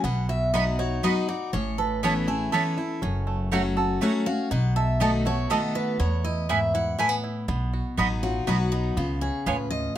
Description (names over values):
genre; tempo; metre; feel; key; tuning
bluegrass; 121 BPM; 3/4; straight; unclear; A4 = 439 Hz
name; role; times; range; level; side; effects
bluegrass banjo; melody; 0.0-10.0 s; F#3 to A4; -33 LUFS; right 6 dB; none
picked steel-string acoustic guitar; melody; 0.0-10.0 s; D#4 to G#5; -30 LUFS; equal; none
picked steel-string acoustic guitar; accompaniment; 0.0-9.9 s; E2 to F#4; -27 LUFS; left 2 dB; none
upright bass; bass; 0.0-9.9 s; F#1 to E2; -28 LUFS; equal; none
mandolin; stabs; 0.5-9.6 s; A3 to B5; -26 LUFS; right 5 dB; none
room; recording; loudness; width
light reverb; close, detailed microphones; -23 LUFS; side -11 dB against mid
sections
0.0-7.5 A section; 7.5-10.0 A section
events
none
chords
0.0 B; 1.5 Aadd9; 3.0 F#m; 4.5 B7; 6.0 E; 7.5 B; 9.0 C#7